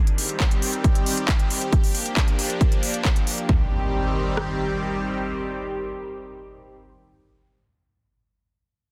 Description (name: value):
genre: uplifting trance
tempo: 136 BPM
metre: 4/4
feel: straight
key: C minor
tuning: A4 = 440 Hz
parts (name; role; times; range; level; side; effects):
- supersaw pad; sustained chords; 0.0-6.8 s; Eb3 to G4; -30 LUFS; equal; phaser, sidechain pumping
- techno drum kit; drums; 0.1-3.5 s; handclaps, hi-hat; -29 LUFS; equal; overdrive
- techno drum kit; drums; 0.4-4.5 s; kick drum, rim click; -22 LUFS; equal; overdrive
- impact; sound effects; 3.5-6.8 s; none; -32 LUFS; equal; none
room: light reverb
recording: dense, heavily limited modern master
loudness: -23 LUFS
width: mono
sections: 0.0-3.5 A section; 3.5-7.0 B section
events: none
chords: 0.0 Cm; 1.7 Gm7; 3.5 Cm